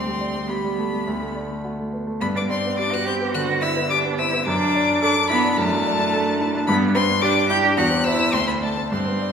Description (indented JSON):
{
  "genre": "quick classical-period movement for piano trio",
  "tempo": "107 BPM",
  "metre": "4/4",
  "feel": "rubato",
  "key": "G major",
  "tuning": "A4 = 439 Hz",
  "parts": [
    { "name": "clear violin", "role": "melody", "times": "0.0-9.3 s", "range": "A5 to G6", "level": "-24 LUFS", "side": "left 5 dB", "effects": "none" },
    { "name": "clear cello", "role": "second line", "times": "0.0-9.3 s", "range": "A3 to G4", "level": "-24 LUFS", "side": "right 3 dB", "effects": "none" },
    { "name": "warm grand piano", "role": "accompaniment", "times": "0.0-9.3 s", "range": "D2 to D5", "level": "-22 LUFS", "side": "equal", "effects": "none" }
  ],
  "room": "wet recital hall reverb, RT60 1.7 s",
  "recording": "recorded in a church or concert hall",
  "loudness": "-18 LUFS",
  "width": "side -7 dB against mid",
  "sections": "0.0-9.3 A section",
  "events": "none",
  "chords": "0.0 G/D; 1.1 D; 2.2 G; 4.5 D/F#; 6.7 G; 7.8 C/E; 8.3 D5"
}